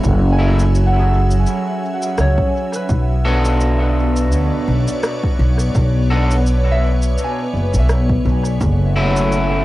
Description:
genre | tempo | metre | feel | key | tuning
ambient dub | 84 BPM | 4/4 | swing 56% on 16ths | B dorian | A4 = 442 Hz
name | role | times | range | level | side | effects
soft additive organ-like pad | sustained chords | 0.0-9.6 s | B2 to G#5 | -23 LUFS | equal | ensemble chorus, built-in reverb, vintage 12-bit sampler grit, cassette tape
electric guitar at the edge of break-up | stabs | 0.0-9.6 s | F#3 to A4 | -22 LUFS | left 1 dB | spring reverb, cassette tape, dub echo
upright bass | bass | 0.0-9.6 s | F#1 to D2 | -15 LUFS | equal | tube saturation
electronic cabasa and rim click | drums | 0.0-9.5 s | none | -26 LUFS | equal | small room ambience, cassette tape, dub echo
electronic kick drum | drums | 0.0-8.8 s | none | -20 LUFS | equal | small room ambience, cassette tape
concert harp | arpeggios | 0.3-9.6 s | G#4 to G#5 | -26 LUFS | right 1 dB | cassette tape, tape echo
bubbling stepped-filter texture | texture | 8.7-9.6 s | A3 to F#5 | -26 LUFS | right 1 dB | chorus, built-in reverb, cassette tape
room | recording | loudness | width
light reverb | home recording on cassette | -14 LUFS | side -17 dB against mid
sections
0.0-9.6 A section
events
none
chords
0.0 F#m7; 2.9 Bm7; 8.6 F#m7

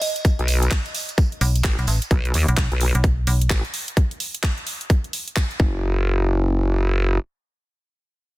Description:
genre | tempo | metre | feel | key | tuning
bass house | 129 BPM | 4/4 | swing 62% on 16ths | F# dorian | A4 = 440 Hz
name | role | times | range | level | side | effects
garage drum kit | drums | 0.0-5.6 s | handclaps, hi-hat | -27 LUFS | right 1 dB | studio reverb
tambourine | percussion | 0.0-2.1 s | none | -34 LUFS | right 4 dB | none
electronic kick drum | drums | 0.2-5.7 s | none | -18 LUFS | equal | studio reverb
vowel-sweep wobble bass | bass | 0.4-7.2 s | F#1 to D#2 | -19 LUFS | equal | chorus, tube saturation, sidechain pumping
metallic FM bass | bass | 1.4-3.5 s | A1 to B1 | -19 LUFS | equal | sidechain pumping
room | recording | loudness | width
digital ambience | dense, heavily limited modern master | -18 LUFS | side -18 dB against mid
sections
0.0-5.8 A section; 5.8-8.4 B section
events
drop 0.0-5.8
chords
none

